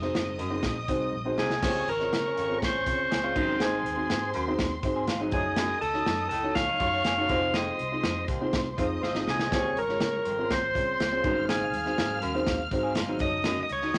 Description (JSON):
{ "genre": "uptempo 1960s-style soul", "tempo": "122 BPM", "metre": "4/4", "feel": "straight", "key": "Db major", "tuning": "A4 = 440 Hz", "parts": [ { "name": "warm studio string section", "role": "second line", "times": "0.0-14.0 s", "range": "Db4 to F6", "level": "-39 LUFS", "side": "equal", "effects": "none" }, { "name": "dark upright piano", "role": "accompaniment", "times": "0.0-14.0 s", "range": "Ab2 to Eb5", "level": "-34 LUFS", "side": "equal", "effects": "none" }, { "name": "vintage muted picked electric bass", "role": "bass", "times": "0.0-14.0 s", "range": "F1 to Db3", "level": "-41 LUFS", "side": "equal", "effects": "none" }, { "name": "natural country drum kit", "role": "drums", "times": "0.0-14.0 s", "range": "crash cymbal, hi-hat, kick drum, snare drum", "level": "-34 LUFS", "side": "equal", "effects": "none" }, { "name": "congas", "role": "percussion", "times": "0.1-1.5, 9.5-14.0 s", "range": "none", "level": "-48 LUFS", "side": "equal", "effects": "none" }, { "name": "warm baritone saxophone", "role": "riff", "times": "0.4-13.6 s", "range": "Eb2 to A2", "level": "-38 LUFS", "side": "equal", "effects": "none" }, { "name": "overdriven tonewheel organ", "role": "melody", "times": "1.4-14.0 s", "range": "Ab4 to F5", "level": "-30 LUFS", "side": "equal", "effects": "stopped rotary speaker" }, { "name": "semi-hollow electric guitar", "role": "riff", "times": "3.1-7.4, 12.8-14.0 s", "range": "Eb3 to Ab4", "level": "-39 LUFS", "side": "equal", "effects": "none" }, { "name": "mellow horn section", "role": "second line", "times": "8.5-9.5 s", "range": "Ab3 to C5", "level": "-37 LUFS", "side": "equal", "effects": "none" } ], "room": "moderate club reverb, RT60 0.8 s", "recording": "none", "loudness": "-28 LUFS", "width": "mono", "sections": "0.0-1.6 A section; 1.6-14.0 B section", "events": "drum fill 1.1-1.6, 9.0-9.5; band accent 7.5-9.5", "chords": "0.0 Ab7; 1.6 Dbmaj7; 3.4 Ab7; 5.3 Gbm6; 7.3 Fm7; 9.5 Dbmaj7; 11.2 Ab7; 13.2 Gbm6" }